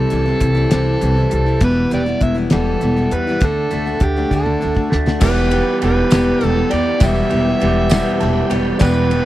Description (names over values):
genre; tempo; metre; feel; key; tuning
folk rock and heartland rock; 67 BPM (dotted quarters); 6/8; straight; E minor; A4 = 439 Hz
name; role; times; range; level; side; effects
overdriven harmonica; melody; 0.0-9.2 s; G4 to E5; -21 LUFS; right 1 dB; none
picked steel-string acoustic guitar; accompaniment; 0.0-9.2 s; E2 to G4; -22 LUFS; left 4 dB; none
electric guitar through a small old amp; riff; 0.0-9.2 s; E2 to G4; -21 LUFS; right 2 dB; none
upright bass; bass; 0.0-9.2 s; E1 to E2; -18 LUFS; equal; none
damped 70s drum kit; drums; 0.1-9.2 s; crash cymbal, hi-hat, kick drum, ride cymbal, snare drum, toms; -18 LUFS; equal; none
dark upright piano; accompaniment; 5.2-9.2 s; E4 to A5; -31 LUFS; right 3 dB; none
tonewheel organ; sustained chords; 5.2-9.2 s; B3 to B4; -29 LUFS; right 2 dB; none
tambourine; percussion; 5.2-9.0 s; none; -35 LUFS; right 2 dB; none
room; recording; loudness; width
little or no reverb; dry, close 1970s-style studio recording; -14 LUFS; side -15 dB against mid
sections
0.0-5.2 A section; 5.2-9.2 B section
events
drum fill 4.3-5.2; upright piano fill 7.9-8.8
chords
0.0 C; 1.6 Em; 3.4 D; 5.2 Em